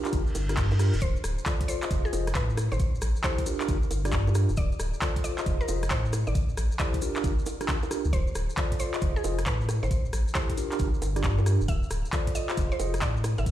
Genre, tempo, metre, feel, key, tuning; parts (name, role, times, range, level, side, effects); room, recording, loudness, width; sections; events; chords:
UK garage, two-step garage; 135 BPM; 4/4; swing 65% on 16ths; D minor; A4 = 440 Hz
mellow tine electric piano; stabs; 0.0-12.9 s; D4 to Eb5; -33 LUFS; right 1 dB; medium stereo tremolo, ping-pong delay
saturated sub bass; bass; 0.1-13.5 s; D1 to A2; -27 LUFS; equal; tube saturation, sidechain pumping
electronic kick drum; drums; 0.1-13.5 s; -28 LUFS; equal
garage drum kit; drums; 0.1-13.5 s; bongos, handclaps, hi-hat, rim click; -34 LUFS; equal
maracas; percussion; 0.1-13.5 s; -43 LUFS; left 3 dB
reverse cymbal; sound effects; 0.2-1.0 s; -42 LUFS; right 1 dB
mallet-like synth pluck; melody; 1.0-13.5 s; Ab4 to E5; -38 LUFS; equal; chorus, tape echo
digital ambience; played on a big sound system in a bare room, large studio reverb; -25 LUFS; side -12 dB against mid
0.0-13.5 A section
reverse cymbal 0.2-1.0
0.0 Gm7; 1.0 Dm7; 1.9 Fm7; 2.6 Am7; 3.5 Gm7; 4.6 Dm7; 5.5 Fm7; 6.1 Am7; 7.0 Gm7; 8.1 Dm7; 9.0 Fm7; 9.7 Am7; 10.6 Gm7; 11.7 Dm7; 12.6 Fm7